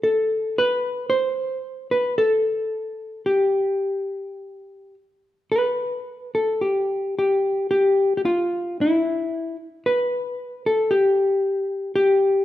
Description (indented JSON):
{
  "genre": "celtic folk",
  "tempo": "51-58 BPM",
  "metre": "4/4",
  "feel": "rubato",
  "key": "G mixolydian",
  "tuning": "A4 = 440 Hz",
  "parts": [
    { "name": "hollow-body jazz guitar", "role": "solo", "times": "0.0-12.4 s", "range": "E4 to C5", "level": "-20 LUFS", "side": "left 1 dB", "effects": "none" }
  ],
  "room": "moderate recital hall reverb, RT60 1.5 s",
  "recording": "minimal, uncompressed stereo recording",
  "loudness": "-20 LUFS",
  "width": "side -13 dB against mid",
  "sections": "0.0-5.5 A section; 5.5-12.4 B section",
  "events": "none",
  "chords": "none"
}